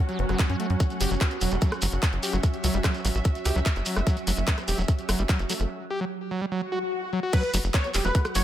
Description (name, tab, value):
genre	psychedelic trance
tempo	147 BPM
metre	4/4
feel	straight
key	unclear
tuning	A4 = 440 Hz
part	evolving wavetable pad	sustained chords	0.0-8.4 s	F#3	-35 LUFS	right 4 dB	phaser, built-in reverb, sidechain pumping
part	muted chamber string section	texture	0.0-8.4 s	C#4 to F#5	-35 LUFS	right 1 dB	sidechain pumping
part	overdriven acid bass	riff	0.1-8.4 s	F#3 to G4	-31 LUFS	moving between left 4 dB and right 4 dB	distortion, auto-pan, sidechain pumping, digital delay
part	garage drum kit	drums	0.1-8.4 s	crash cymbal, handclaps, hi-hat, rim click	-31 LUFS	left 1 dB	none
part	vowel-sweep wobble bass	second line	0.2-8.2 s	A3 to C#4	-42 LUFS	left 2 dB	analog chorus, sidechain pumping, high-pass filter, ping-pong delay
part	tight sequencer bass	bass	0.2-8.4 s	E1 to F#2	-26 LUFS	equal	none
part	electronic kick drum	drums	0.4-8.2 s	none	-23 LUFS	equal	none
part	shekere	percussion	0.8-8.4 s	none	-35 LUFS	right 2 dB	none
part	swell	sound effects	6.6-7.3 s	none	-32 LUFS	left 5 dB	none
part	wide unison lead	melody	7.3-8.4 s	B4 to C#5	-29 LUFS	equal	phaser, sidechain pumping, digital delay
room	light reverb, digital ambience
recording	none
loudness	-23 LUFS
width	side -12 dB against mid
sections	0.0-7.3 A section; 7.3-8.4 B section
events	break 5.7-7.3; swell 6.6-7.3; drop 7.3-8.4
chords	0.0 F#5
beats	0.39 | 0.80 1.21 1.62 2.03 | 2.43 2.84 3.25 3.66 | 4.07 4.47 4.88 5.29 | 5.70 6.11 6.52 6.92 | 7.33 7.74 8.15